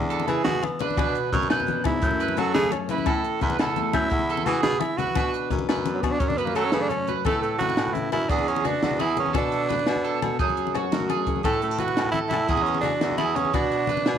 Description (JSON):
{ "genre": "highlife guitar band", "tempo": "115 BPM (dotted quarters)", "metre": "12/8", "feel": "straight", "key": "A major", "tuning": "A4 = 440 Hz", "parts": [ { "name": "growling tenor saxophone", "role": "melody", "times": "0.0-14.2 s", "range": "F#3 to G#4", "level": "-26 LUFS", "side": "right 3 dB", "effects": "none" }, { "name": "picked steel-string acoustic guitar", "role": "accompaniment", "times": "0.0-14.2 s", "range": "F#2 to C#5", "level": "-33 LUFS", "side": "left 11 dB", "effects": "none" }, { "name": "clear baritone saxophone", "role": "bass", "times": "0.0-14.2 s", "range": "E2 to F#3", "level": "-28 LUFS", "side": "equal", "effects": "none" }, { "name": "congas", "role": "percussion", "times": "0.0-14.2 s", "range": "none", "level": "-32 LUFS", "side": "left 9 dB", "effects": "none" }, { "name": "electric guitar at the edge of break-up", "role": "arpeggios", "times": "0.1-14.2 s", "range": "F#4 to C#5", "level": "-28 LUFS", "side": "right 10 dB", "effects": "lush chorus, slapback echo" }, { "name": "compact cocktail drum kit", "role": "drums", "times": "0.1-14.1 s", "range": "hi-hat, kick drum, snare drum", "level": "-28 LUFS", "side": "equal", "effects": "none" }, { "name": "agogo bells", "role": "percussion", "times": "0.3-14.2 s", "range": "none", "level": "-35 LUFS", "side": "left 13 dB", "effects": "none" } ], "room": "light reverb, studio ambience", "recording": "1960s-style stereo with parts hard left and right", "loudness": "-21 LUFS", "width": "side -9 dB against mid", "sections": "0.0-7.3 A section; 7.3-14.2 B section", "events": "tenor saxophone solo 0.0-7.3; drum fill 6.6-7.3", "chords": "0.0 E; 1.0 Bm; 2.0 F#m; 3.1 Asus2; 4.1 E; 5.2 Bm; 6.2 F#m; 7.3 Asus2; 8.3 Eadd9; 9.4 Bm; 10.4 F#m; 11.4 Asus2; 12.5 Eadd9; 13.5 Bm" }